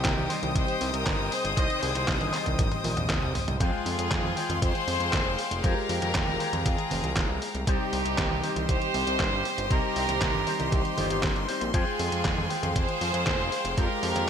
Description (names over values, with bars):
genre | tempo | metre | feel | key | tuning
italo disco | 118 BPM | 4/4 | straight | F minor | A4 = 440 Hz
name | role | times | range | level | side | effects
rich chamber violin section | melody | 0.0-14.3 s | Eb4 to Eb5 | -30 LUFS | equal | ping-pong delay
bright chamber string section | sustained chords | 0.0-14.3 s | Ab3 to Eb6 | -33 LUFS | left 2 dB | none
electric guitar with an envelope filter | stabs | 0.0-14.3 s | C3 to G5 | -35 LUFS | left 4 dB | none
fat analog bass | bass | 0.0-14.3 s | F1 to F2 | -32 LUFS | right 1 dB | none
detuned 8-bit digital drum machine | drums | 0.0-14.3 s | congas, handclaps, hi-hat, snare drum, toms | -31 LUFS | right 1 dB | gated reverb
electronic kick drum | drums | 0.0-13.9 s | none | -28 LUFS | equal | none
room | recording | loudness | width
light reverb | none | -24 LUFS | side -8 dB against mid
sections
0.0-14.3 A section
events
drum fill 2.6-3.6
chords
0.0 Cm; 3.6 Fmadd9; 7.7 Cm; 11.7 Fmadd9